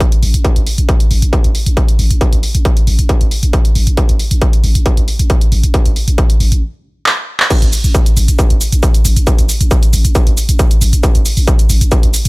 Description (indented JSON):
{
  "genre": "driving peak-time techno",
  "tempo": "136 BPM",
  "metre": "4/4",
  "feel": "straight",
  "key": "unclear",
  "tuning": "A4 = 440 Hz",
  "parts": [
    { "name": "electronic kick drum", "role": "drums", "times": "0.0-12.0 s", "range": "none", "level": "-11 LUFS", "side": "equal", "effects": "distortion" },
    { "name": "punchy analog drum machine", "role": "drums", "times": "0.0-12.3 s", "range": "crash cymbal, handclaps, hi-hat, shaker", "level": "-18 LUFS", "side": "right 1 dB", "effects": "sidechain pumping on hats, sidechain pumping on cymbals, sidechain pumping on perc" },
    { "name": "growling 808-style bass", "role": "bass", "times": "0.2-12.3 s", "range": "A1", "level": "-14 LUFS", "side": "equal", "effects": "sidechain pumping, low-pass filter" }
  ],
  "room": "little or no reverb",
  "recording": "none",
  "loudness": "-10 LUFS",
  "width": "side -24 dB against mid",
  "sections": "0.0-7.5 A section; 7.5-12.3 B section",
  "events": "stop 6.6-7.5; drum fill 7.1-7.5; drop 7.5-12.3",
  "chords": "none",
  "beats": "0.01 | 0.45 0.89 1.33 1.77 | 2.21 2.65 3.09 3.53 | 3.98 4.42 4.86 5.30 | 5.74 6.18 6.62 7.06 | 7.50 7.95 8.39 8.83 | 9.27 9.71 10.15 10.59 | 11.03 11.48 11.92"
}